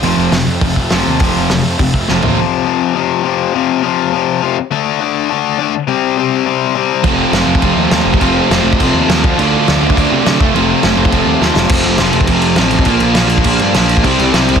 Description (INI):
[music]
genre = punk rock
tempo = 206 BPM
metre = 4/4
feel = straight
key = F major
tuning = A4 = 440 Hz
[part]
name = crunchy overdriven guitar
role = riff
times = 0.0-2.4, 7.0-14.6 s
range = F2 to F4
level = -15 LUFS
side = right 13 dB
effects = none
[part]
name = fuzz guitar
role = riff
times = 0.0-2.4, 7.0-11.6, 14.0-14.6 s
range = F2 to F4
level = -20 LUFS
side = right 1 dB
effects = distortion
[part]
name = overdriven electric guitar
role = riff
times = 0.0-14.6 s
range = F2 to D4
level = -15 LUFS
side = left 11 dB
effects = none
[part]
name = fuzz picked electric bass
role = bass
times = 0.0-2.3, 7.0-14.6 s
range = F1 to C3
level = -18 LUFS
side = equal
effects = overdrive
[part]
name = loose indie drum kit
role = drums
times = 0.0-2.3, 7.0-14.6 s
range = crash cymbal, hi-hat, kick drum, snare drum, toms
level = -15 LUFS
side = equal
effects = none
[sound]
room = light reverb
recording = dense, heavily limited modern master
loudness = -10 LUFS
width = side -6 dB against mid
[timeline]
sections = 0.0-2.4 A section; 2.4-11.7 B section; 11.7-14.6 C section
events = drum fill 2.1, 11.4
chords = 0.0 F; 2.4 F5; 4.6 D5; 5.7 C5; 7.1 F; 9.2 Dm; 10.4 F; 12.9 Bb; 14.0 C